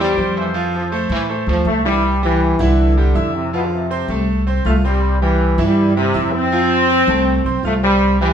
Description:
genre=latin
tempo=161 BPM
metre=4/4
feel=straight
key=unclear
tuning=A4 = 441 Hz
part: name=warm trumpet section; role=melody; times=0.0-1.1 s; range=F4 to D5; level=-24 LUFS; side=right 1 dB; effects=none
part: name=bright trombone section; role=second line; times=0.0-1.9, 8.2-8.3 s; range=D3 to G3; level=-22 LUFS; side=equal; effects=none
part: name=bright concert grand piano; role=accompaniment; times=0.0-8.3 s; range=E3 to F6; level=-21 LUFS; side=right 2 dB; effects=none
part: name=upright bass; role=bass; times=0.0-8.3 s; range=B1 to A2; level=-18 LUFS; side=equal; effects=none
part: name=bright trombone section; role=melody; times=1.7-8.3 s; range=B2 to C4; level=-17 LUFS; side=equal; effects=none
room=wet stone room reverb, RT60 1.0 s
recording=band playing live in one room, nothing above 10.6 kHz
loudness=-14 LUFS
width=side -8 dB against mid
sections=0.0-2.0 A section; 2.0-8.3 B section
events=none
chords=0.0 C; 0.5 F; 2.0 C; 3.5 F; 5.0 C; 6.5 F

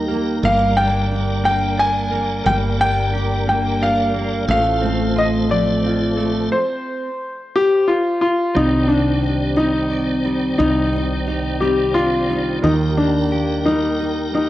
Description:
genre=six-eight pop ballad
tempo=59 BPM (dotted quarters)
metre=6/8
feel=straight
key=C minor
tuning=A4 = 437 Hz
part: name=clear concert grand piano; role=melody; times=0.0-14.5 s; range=D4 to Ab5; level=-18 LUFS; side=left 1 dB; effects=none
part: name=fingerpicked steel-string acoustic guitar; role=accompaniment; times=0.0-14.5 s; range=A2 to D5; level=-23 LUFS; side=equal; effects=double-tracked left and right
part: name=tonewheel organ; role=sustained chords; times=0.0-14.5 s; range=Eb3 to Bb5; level=-27 LUFS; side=right 1 dB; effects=chorus vibrato, fast rotary speaker
part: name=direct-recorded clean electric guitar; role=arpeggios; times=0.0-14.5 s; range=G3 to G4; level=-28 LUFS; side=right 4 dB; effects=none
part: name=woody fretless electric bass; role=bass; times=0.0-14.5 s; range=G1 to Eb2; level=-23 LUFS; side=equal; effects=none
room=moderate plate reverb, RT60 2.6 s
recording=worn, warbling old tape, cassette tape, warbly pitch drift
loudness=-16 LUFS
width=side -14 dB against mid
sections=0.0-8.6 A section; 8.6-14.5 A section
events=none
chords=0.4 Gm; 4.5 F/A; 6.5 N.C.; 8.6 Cmadd9; 12.6 Eb

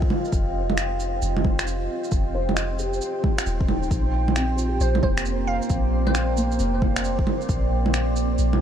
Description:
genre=future garage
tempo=134 BPM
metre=4/4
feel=swing 65% on 16ths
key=unclear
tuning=A4 = 442 Hz
part: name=felt-muted upright piano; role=accompaniment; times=0.0-8.6 s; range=Bb3 to Eb5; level=-32 LUFS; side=left 2 dB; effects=sidechain pumping, ping-pong delay
part: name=deep dark ambient pad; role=sustained chords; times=0.0-8.6 s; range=Bb3 to G5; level=-28 LUFS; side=right 2 dB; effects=chorus, built-in reverb, sidechain pumping
part: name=soft 808-style bass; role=bass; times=0.0-8.6 s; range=Eb1 to Bb1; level=-25 LUFS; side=equal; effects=sidechain pumping
part: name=electronic kick drum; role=drums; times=0.0-7.6 s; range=none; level=-24 LUFS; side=equal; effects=none
part: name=flickering grainy texture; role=texture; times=0.0-8.6 s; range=C4 to C5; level=-36 LUFS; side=right 1 dB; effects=built-in reverb
part: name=electronic bongos, shaker and finger snaps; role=drums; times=0.1-8.6 s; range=none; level=-27 LUFS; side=right 3 dB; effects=none
part: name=glassy wavetable pluck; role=melody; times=4.8-6.7 s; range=C5 to F5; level=-33 LUFS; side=right 1 dB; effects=chorus, dub echo
room=light reverb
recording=dark, warm production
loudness=-21 LUFS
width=side -9 dB against mid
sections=0.0-8.6 A section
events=none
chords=0.0 Fm9; 3.9 Bb69

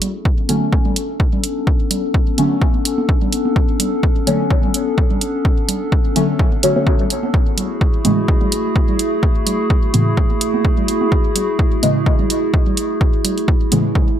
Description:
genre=dub techno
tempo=127 BPM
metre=4/4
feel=swing 55% on 16ths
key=B dorian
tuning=A4 = 440 Hz
part: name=warbly tape-like pad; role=sustained chords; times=0.0-14.2 s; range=A3 to A4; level=-21 LUFS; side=left 1 dB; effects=chorus, built-in reverb, sidechain pumping
part: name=electronic hi-hat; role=drums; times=0.0-13.8 s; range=none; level=-20 LUFS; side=right 2 dB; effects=none
part: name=congas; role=percussion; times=0.0-13.8 s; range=none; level=-26 LUFS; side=right 2 dB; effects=sidechain pumping on perc, dub echo
part: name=electronic kick drum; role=drums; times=0.3-14.1 s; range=none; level=-16 LUFS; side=equal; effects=none
part: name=deep mellow chord stab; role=stabs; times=0.5-13.9 s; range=A2 to C#4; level=-18 LUFS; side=equal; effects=chorus, phaser, cassette tape, dub echo
room=light reverb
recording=none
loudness=-14 LUFS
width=side -10 dB against mid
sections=0.0-14.2 A section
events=none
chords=0.0 Bm9; 7.3 F#m9

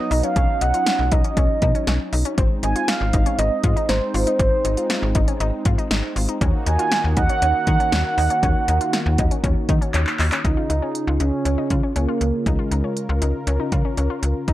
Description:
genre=synth-pop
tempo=119 BPM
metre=4/4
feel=straight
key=Db major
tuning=A4 = 440 Hz
part: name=mellow horn-like synth lead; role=melody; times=0.0-14.5 s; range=Ab3 to Ab5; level=-22 LUFS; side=right 3 dB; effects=chorus, slapback echo
part: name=warm analog pad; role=sustained chords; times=0.0-14.5 s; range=Db3 to Bb4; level=-28 LUFS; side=equal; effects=chorus
part: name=analog pluck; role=arpeggios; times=0.0-14.5 s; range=C4 to F4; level=-29 LUFS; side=left 6 dB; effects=chorus, slapback echo
part: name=slap-like FM bass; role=bass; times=0.1-14.5 s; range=Ab1 to Eb3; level=-21 LUFS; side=equal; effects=none
part: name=deep house drum kit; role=drums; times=0.1-14.5 s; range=handclaps, hi-hat, kick drum, snare drum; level=-22 LUFS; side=equal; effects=none
room=light reverb, digital ambience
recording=none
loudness=-18 LUFS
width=side -14 dB against mid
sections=0.0-10.4 A section; 10.4-14.5 B section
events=drum fill 9.9-10.4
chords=0.0 Cb; 2.4 Ab; 6.4 Ebmadd9; 10.4 Db

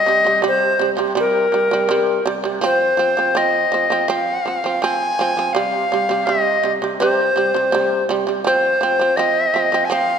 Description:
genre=mongolian traditional, Mongolian folk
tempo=82 BPM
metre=4/4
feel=straight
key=F minor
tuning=A4 = 442 Hz
part: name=bright reedy tenor recorder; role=melody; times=0.0-10.2 s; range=Bb4 to Ab5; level=-17 LUFS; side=left 1 dB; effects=none
part: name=shamisen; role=arpeggios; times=0.1-10.2 s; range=C3 to C4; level=-20 LUFS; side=right 4 dB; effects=none
room=moderate concert hall reverb, RT60 2.1 s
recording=none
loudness=-15 LUFS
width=side -7 dB against mid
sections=0.0-10.2 A section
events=none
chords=0.0 C5; 2.6 F5; 5.5 C5; 8.5 F5

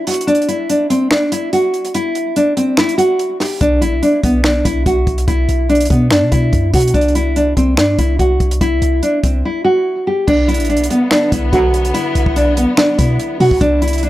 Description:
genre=hip hop, trap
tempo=144 BPM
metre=4/4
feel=half-time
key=B phrygian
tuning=A4 = 440 Hz
part: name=nylon-string guitar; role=melody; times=0.0-14.1 s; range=B3 to G4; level=-14 LUFS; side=equal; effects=none
part: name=compact cocktail drum kit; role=drums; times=0.1-14.1 s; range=crash cymbal, finger snaps, hi-hat, kick drum, snare drum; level=-18 LUFS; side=equal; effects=none
part: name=clean 808-style bass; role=bass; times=3.6-14.1 s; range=A1 to B2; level=-16 LUFS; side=equal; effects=none
part: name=dark studio string section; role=sustained chords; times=10.3-14.1 s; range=C3 to E4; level=-26 LUFS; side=left 2 dB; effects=none
part: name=clear brass ensemble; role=stabs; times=11.5-11.9 s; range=D2 to F#3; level=-22 LUFS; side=equal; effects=none
room=small room reverb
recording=dry, gritty hardware recording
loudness=-12 LUFS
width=side -15 dB against mid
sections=0.0-10.3 A section; 10.3-14.1 B section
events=break 0.0-3.6; drums muted 9.4-10.3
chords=0.0 N.C.; 3.6 B5; 6.9 C; 10.3 Bm

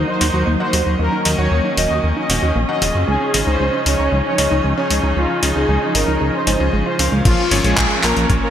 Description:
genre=italo disco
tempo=115 BPM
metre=4/4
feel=straight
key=unclear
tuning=A4 = 440 Hz
part: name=muted studio string section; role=sustained chords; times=0.0-8.5 s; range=F3 to Eb4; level=-22 LUFS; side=equal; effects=none
part: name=wide unison pluck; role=arpeggios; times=0.0-7.2 s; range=Ab3 to Gb4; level=-26 LUFS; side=right 2 dB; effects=digital delay
part: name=clear electric grand piano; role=stabs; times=0.0-8.5 s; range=Bb2 to Ab5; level=-23 LUFS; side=left 1 dB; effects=none
part: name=chorused synth bass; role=bass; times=0.0-8.4 s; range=Eb1 to Gb2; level=-20 LUFS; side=equal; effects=none
part: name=analog synth brass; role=melody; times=0.1-8.5 s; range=F3 to Eb5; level=-21 LUFS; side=equal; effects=chorus, cassette tape, digital delay
part: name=gated 80s digital drum machine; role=drums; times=0.2-8.4 s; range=crash cymbal, handclaps, hi-hat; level=-20 LUFS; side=left 1 dB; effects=gated reverb, overdrive
part: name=electronic kick drum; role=drums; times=7.3-8.4 s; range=none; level=-18 LUFS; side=equal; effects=none
room=moderate lush hall reverb, RT60 1.8 s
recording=bright 1980s-style digital production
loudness=-14 LUFS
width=side -10 dB against mid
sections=0.0-7.3 A section; 7.3-8.5 B section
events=filter sweep on synth arpeggio sound 0.0-7.3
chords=0.0 Ebm; 3.1 Dbadd9; 7.3 Bbm

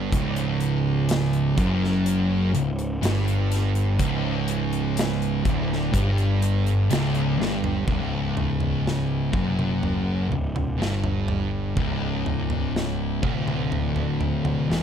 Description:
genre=stoner and doom metal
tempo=62 BPM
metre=4/4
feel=straight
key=unclear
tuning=A4 = 440 Hz
part: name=thick fuzz guitar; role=riff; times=0.0-14.8 s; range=C#2 to G2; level=-27 LUFS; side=left 7 dB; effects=distortion
part: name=thick fuzz guitar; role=riff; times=0.0-14.8 s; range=C#2 to G2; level=-27 LUFS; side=right 8 dB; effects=distortion
part: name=thick fuzz guitar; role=riff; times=0.0-7.9 s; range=C#2 to G2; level=-28 LUFS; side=right 1 dB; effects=distortion
part: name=fuzz picked electric bass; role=bass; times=0.0-14.8 s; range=C#1 to G1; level=-28 LUFS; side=equal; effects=overdrive
part: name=big rock drum kit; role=drums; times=0.1-14.8 s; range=hi-hat, kick drum, snare drum, toms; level=-28 LUFS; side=equal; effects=none
room=light reverb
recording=dark, warm production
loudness=-21 LUFS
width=side -8 dB against mid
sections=0.0-7.9 A section; 7.9-14.8 B section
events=drum fill 7.4-7.9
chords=none

